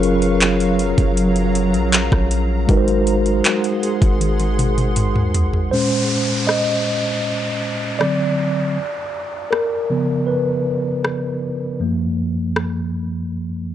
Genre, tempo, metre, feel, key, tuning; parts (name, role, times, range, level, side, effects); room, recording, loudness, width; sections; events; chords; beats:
contemporary R&B; 79 BPM; 4/4; straight; Bb minor; A4 = 438 Hz
mellow tine electric piano; accompaniment; 0.0-13.7 s; Gb2 to Eb5; -19 LUFS; equal; medium stereo tremolo
granular cloud pad; sustained chords; 0.0-5.7 s; Gb3 to C6; -25 LUFS; equal; built-in reverb
warm 808-style bass; bass; 0.0-5.7 s; Gb1 to Eb2; -21 LUFS; equal
smooth R&B drum kit; drums; 0.0-12.7 s; handclaps, hi-hat, kick drum, rim click, toms; -19 LUFS; equal
downlifter; sound effects; 5.7-11.8 s; -27 LUFS; equal
digital ambience; dry, gritty hardware recording, transformer saturation, nothing above 10.3 kHz; -16 LUFS; side -11 dB against mid
0.0-5.7 A section; 5.7-13.7 B section
drum fill 4.2-5.7; tine electric piano solo 5.7-13.7
0.0 Gbmaj7; 2.7 Ab7; 5.7 Bbm7; 8.0 D7; 8.8 Db7; 11.8 Gbmaj7
0.41 1.17 1.93 | 2.69 3.45 4.21 4.97 | 5.72 6.49 7.24 8.00 | 8.76 9.52 10.28 11.04 | 11.80 12.56 13.32